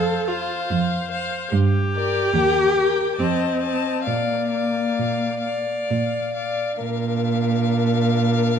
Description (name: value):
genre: classical, slow romantic movement for string quartet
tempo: 65-76 BPM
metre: 3/4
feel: rubato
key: Bb major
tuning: A4 = 440 Hz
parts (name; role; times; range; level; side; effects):
- rich violin; melody; 0.0-8.6 s; D5 to A5; -28 LUFS; left 5 dB; none
- rich violin; second line; 0.0-8.6 s; Bb4 to Eb5; -26 LUFS; left 5 dB; none
- rich viola; accompaniment; 0.0-8.6 s; Bb3 to A4; -24 LUFS; left 1 dB; none
- rich cello; bass; 0.0-8.6 s; Eb2 to Bb2; -23 LUFS; right 4 dB; none
room: moderate recital hall reverb, RT60 1.7 s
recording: dark, warm production, nothing above 10.9 kHz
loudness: -19 LUFS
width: side -7 dB against mid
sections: 0.0-6.8 A section; 6.8-8.6 B section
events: none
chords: 0.0 F; 1.5 Gm; 2.3 Eb; 3.2 F7; 4.1 Bb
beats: 0.70 | 1.53 2.34 3.19 | 4.07 4.99 5.92 | 6.80 7.60 8.40